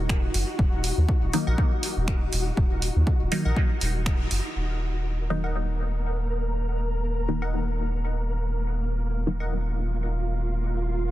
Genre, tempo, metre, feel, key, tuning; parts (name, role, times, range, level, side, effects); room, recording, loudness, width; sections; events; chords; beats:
dub techno; 121 BPM; 4/4; swing 55% on 16ths; Eb minor; A4 = 440 Hz
soft dub sub bass; bass; 0.0-11.1 s; Eb1 to Eb2; -26 LUFS; equal; sidechain pumping
flickering grainy texture; texture; 0.0-11.1 s; Bb3 to Bb4; -34 LUFS; equal; built-in reverb, sidechain pumping
electronic kick drum; drums; 0.1-4.2 s; -23 LUFS; equal
punchy analog drum machine; drums; 0.1-4.4 s; finger snaps, hi-hat; -33 LUFS; right 1 dB; soft clipping on snare
filtered dub chord stab; stabs; 1.3-9.4 s; Eb3 to Eb4; -32 LUFS; left 1 dB; phaser, sidechain pumping, dub echo
wavetable chord stab; riff; 1.5-9.5 s; Bb4 to Gb5; -41 LUFS; left 1 dB; cassette tape, sidechain pumping, dub echo
little or no reverb; dense, heavily limited modern master; -24 LUFS; side -15 dB against mid
0.0-4.6 A section; 4.6-11.1 B section
band accent 4.1; filter sweep on synth stab 4.6-11.1
0.0 Ebm; 4.6 Eb5
0.09 | 0.59 1.09 1.58 2.08 | 2.57 3.07 3.56 4.06 | 4.56 5.05 5.55 6.04 | 6.54 7.04 7.53 8.03 | 8.52 9.02 9.52 10.01 | 10.51 11.00